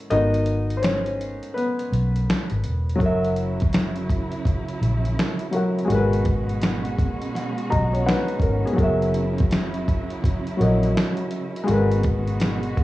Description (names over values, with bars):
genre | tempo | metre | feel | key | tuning
lo-fi hip hop | 83 BPM | 4/4 | swing 64% on 16ths | unclear | A4 = 436 Hz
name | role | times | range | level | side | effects
felt-muted upright piano | accompaniment | 0.0-12.8 s | F#3 to A#5 | -24 LUFS | left 1 dB | cassette tape, low-pass filter, plate reverb
vintage muted fingered electric bass | bass | 0.1-12.8 s | E1 to B1 | -24 LUFS | equal | none
dusty soul sampler-style drum kit | drums | 0.1-12.8 s | finger snaps, hi-hat, kick drum, snare drum | -24 LUFS | equal | vintage 12-bit sampler grit
warm studio string section | sustained chords | 3.0-12.8 s | B2 to F#4 | -30 LUFS | right 3 dB | low-pass filter
room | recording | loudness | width
moderate studio reverb, RT60 0.6 s | cassette tape, studio reverb | -20 LUFS | side -16 dB against mid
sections
0.0-3.0 A section; 3.0-12.8 A section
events
felt piano solo 0.0-3.0; kick muted 0.1-3.0; felt piano fill 7.3-8.8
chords
0.1 G#m9; 3.0 F#7; 5.9 G#m9; 8.8 F#7; 11.7 G#m9